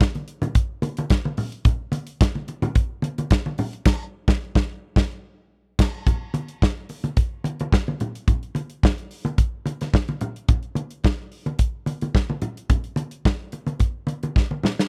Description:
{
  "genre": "disco",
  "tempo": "109 BPM",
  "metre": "4/4",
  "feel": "straight",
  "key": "none",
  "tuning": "none",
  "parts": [
    { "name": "modern studio drum kit", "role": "drums", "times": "0.0-14.9 s", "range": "crash cymbal, hi-hat, kick drum, snare drum", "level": "-21 LUFS", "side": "equal", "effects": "none" },
    { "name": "congas", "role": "percussion", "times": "0.0-14.8 s", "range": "none", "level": "-29 LUFS", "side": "equal", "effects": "none" }
  ],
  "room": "small room ambience",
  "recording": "dry, close 1970s-style studio recording",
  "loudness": "-24 LUFS",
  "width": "mono",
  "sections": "0.0-6.1 A section; 6.1-14.9 B section",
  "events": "band accent 3.9-6.1; drum fill 14.4-14.9",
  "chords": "none",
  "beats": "0.00 0.55 1.10 | 1.66 2.21 2.76 3.31 | 3.86 4.41 4.96 5.51 | 6.07 6.62 7.17 7.72 | 8.27 8.83 9.38 9.93 | 10.49 11.04 11.59 12.15 | 12.70 13.25 13.81 14.36"
}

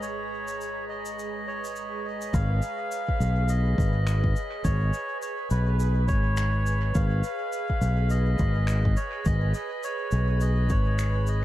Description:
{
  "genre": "ambient dub",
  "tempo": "104 BPM",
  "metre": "4/4",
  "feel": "swing 58% on 16ths",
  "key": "G# dorian",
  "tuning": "A4 = 440 Hz",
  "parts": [
    { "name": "melodica", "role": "melody", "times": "0.0-11.4 s", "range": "B4 to E#5", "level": "-32 LUFS", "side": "equal", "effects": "dub echo" },
    { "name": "soft additive organ-like pad", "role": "sustained chords", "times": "0.0-11.4 s", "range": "G#3 to A#5", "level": "-36 LUFS", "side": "right 2 dB", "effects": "ensemble chorus, built-in reverb" },
    { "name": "overdriven fingered electric bass", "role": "bass", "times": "0.0-11.4 s", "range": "G#1 to B1", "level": "-23 LUFS", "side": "equal", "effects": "none" },
    { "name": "cabasa and finger snaps", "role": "drums", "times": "0.0-11.4 s", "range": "none", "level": "-42 LUFS", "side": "left 2 dB", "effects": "dub echo" },
    { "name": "drifting glass-harmonics texture", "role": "texture", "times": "0.0-11.4 s", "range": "B4", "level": "-41 LUFS", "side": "right 7 dB", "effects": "chorus, built-in reverb" },
    { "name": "electronic kick drum", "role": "drums", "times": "2.3-10.8 s", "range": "none", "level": "-27 LUFS", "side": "equal", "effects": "overdrive" }
  ],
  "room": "little or no reverb",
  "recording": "echo-heavy mix",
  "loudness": "-24 LUFS",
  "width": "side -14 dB against mid",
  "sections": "0.0-2.3 A section; 2.3-11.4 B section",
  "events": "none",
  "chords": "0.0 Badd9/G#; 2.3 G#m",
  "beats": "| 0.03 0.60 1.18 1.76 | 2.34 2.91 3.49 4.07 | 4.64 5.22 5.80 6.37 | 6.95 7.53 8.11 8.68 | 9.26 9.84 10.41 10.99"
}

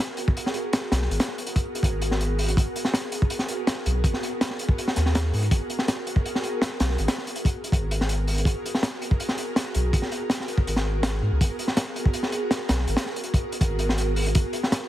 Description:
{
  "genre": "drum and bass, jungle",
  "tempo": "163 BPM",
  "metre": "4/4",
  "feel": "straight",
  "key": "G# minor",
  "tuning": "A4 = 441 Hz",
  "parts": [
    { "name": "crunchy breakbeat drum kit", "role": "drums", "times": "0.2-14.8 s", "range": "hi-hat, kick drum, snare drum", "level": "-24 LUFS", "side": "equal", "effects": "none" },
    { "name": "soft dub sub bass", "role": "bass", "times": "0.9-14.4 s", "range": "G#1 to G#2", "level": "-24 LUFS", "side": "equal", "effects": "none" }
  ],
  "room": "light reverb, small room ambience",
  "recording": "heavily compressed radio sound",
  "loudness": "-22 LUFS",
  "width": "side -13 dB against mid",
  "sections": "0.0-14.9 A section",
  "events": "none",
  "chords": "none",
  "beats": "0.36 0.73 | 1.10 1.47 1.83 2.20 | 2.57 2.94 3.31 3.67 | 4.04 4.41 4.78 5.15 | 5.51 5.88 6.25 6.62 | 6.99 7.36 7.72 8.09 | 8.46 8.83 9.20 9.56 | 9.93 10.30 10.67 11.04 | 11.40 11.77 12.14 12.51 | 12.88 13.24 13.61 13.98 | 14.35 14.72"
}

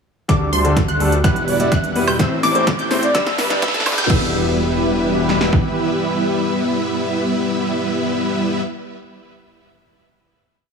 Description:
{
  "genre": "EDM, festival progressive house",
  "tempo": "126 BPM",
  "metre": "4/4",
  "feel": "straight",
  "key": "E minor",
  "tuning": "A4 = 439 Hz",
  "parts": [
    { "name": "warm concert grand piano", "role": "accompaniment", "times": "0.3-8.6 s", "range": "G2 to D5", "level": "-25 LUFS", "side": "left 2 dB", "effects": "sidechain pumping, tape echo" },
    { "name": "lush unison pad", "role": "sustained chords", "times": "1.2-8.6 s", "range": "D3 to B4", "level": "-26 LUFS", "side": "right 1 dB", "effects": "chorus, sidechain pumping" },
    { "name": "wide unison pluck", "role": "arpeggios", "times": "0.3-8.6 s", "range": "C6 to G6", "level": "-23 LUFS", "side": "equal", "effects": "sidechain pumping, tape echo" },
    { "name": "dense compressed supersaw", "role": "riff", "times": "0.3-8.6 s", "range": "G3 to G5", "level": "-21 LUFS", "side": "equal", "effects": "sidechain pumping, low-pass filter, tape echo" },
    { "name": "wide detuned saw bass", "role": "bass", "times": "0.3-5.5 s", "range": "E1 to D2", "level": "-23 LUFS", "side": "equal", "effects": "chorus, sidechain pumping" },
    { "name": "big-room dance drum kit", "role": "drums", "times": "0.3-5.6 s", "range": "kick drum, snare drum", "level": "-20 LUFS", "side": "equal", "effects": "overdrive" },
    { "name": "big-room dance drum kit", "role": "drums", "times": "0.3-4.2 s", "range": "crash cymbal, hi-hat, snare drum, woodblock", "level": "-24 LUFS", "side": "right 1 dB", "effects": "overdrive" },
    { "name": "riser", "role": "sound effects", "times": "1.9-4.1 s", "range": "none", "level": "-27 LUFS", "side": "right 2 dB", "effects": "none" },
    { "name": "breathy flute-like synth lead", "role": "melody", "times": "1.5-4.1 s", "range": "A4 to E5", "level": "-25 LUFS", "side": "right 1 dB", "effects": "chorus, tape echo" }
  ],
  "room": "light reverb",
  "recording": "high-pass filter",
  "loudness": "-15 LUFS",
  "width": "side -5 dB against mid",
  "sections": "0.3-4.1 build; 4.1-7.9 final chord",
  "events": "build-up 0.3-4.1; drum fill 0.3-4.1; filter sweep on supersaw synth 0.3-4.1; filter sweep 0.3-4.1; riser 1.9-4.1",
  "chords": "0.3 Dsus4; 1.2 Em; 2.2 Am; 3.1 G; 4.1 Em",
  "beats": "| 0.29 0.77 1.24 1.72 | 2.19 2.67 3.15 3.62 | 4.10 4.58 5.05 5.53 | 6.00 6.48 6.96 7.43"
}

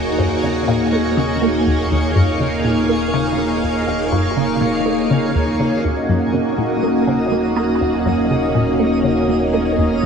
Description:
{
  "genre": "ambient, sequencer-driven space music",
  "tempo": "122 BPM",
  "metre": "4/4",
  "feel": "straight",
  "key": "Eb minor",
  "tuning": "A4 = 440 Hz",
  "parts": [
    { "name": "string machine, full ensemble", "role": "sustained chords", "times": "0.0-10.1 s", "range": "Bb3 to F5", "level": "-18 LUFS", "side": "equal", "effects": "ensemble chorus" },
    { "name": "resonant blip pluck", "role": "riff", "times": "0.0-10.1 s", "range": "Eb2 to Bb3", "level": "-20 LUFS", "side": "equal", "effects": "phaser, ensemble chorus, analog delay" },
    { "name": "fat analog bass", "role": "bass", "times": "0.0-10.1 s", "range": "Eb1", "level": "-30 LUFS", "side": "equal", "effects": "none" },
    { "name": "twinkling granular texture", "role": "texture", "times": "0.0-10.1 s", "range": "Eb4 to Eb5", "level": "-26 LUFS", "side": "equal", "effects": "built-in reverb" },
    { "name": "vibraphone with soft mallets", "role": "arpeggios", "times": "0.1-10.1 s", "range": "Eb4 to Eb5", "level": "-27 LUFS", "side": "left 1 dB", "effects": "auto-pan, analog delay" }
  ],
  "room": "wet plate reverb, RT60 2.5 s",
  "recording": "none",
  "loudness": "-15 LUFS",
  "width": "side -6 dB against mid",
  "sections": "0.0-10.1 A section",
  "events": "filter sweep on synth arpeggio sound 0.0-10.1",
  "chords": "0.0 Ebm",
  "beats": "0.43 0.93 1.42 | 1.91 2.40 2.89 3.39 | 3.88 4.37 4.86 5.35 | 5.84 6.34 6.83 7.32 | 7.81 8.30 8.79 9.29 | 9.78"
}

